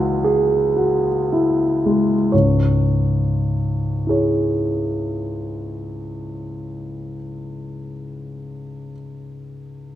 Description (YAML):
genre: classical, impressionist solo piano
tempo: 34 BPM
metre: 4/4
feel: rubato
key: C# minor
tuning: A4 = 441 Hz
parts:
  - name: warm concert grand piano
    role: solo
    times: 0.0-10.0 s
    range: C#2 to C#5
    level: -19 LUFS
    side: equal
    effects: none
room: moderate recital hall reverb, RT60 1.6 s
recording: close, detailed microphones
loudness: -17 LUFS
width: side -12 dB against mid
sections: 0.0-2.3 A section; 2.3-9.3 B section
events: slowing down 0.0-2.3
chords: 0.0 Eadd9/C#; 2.3 C#m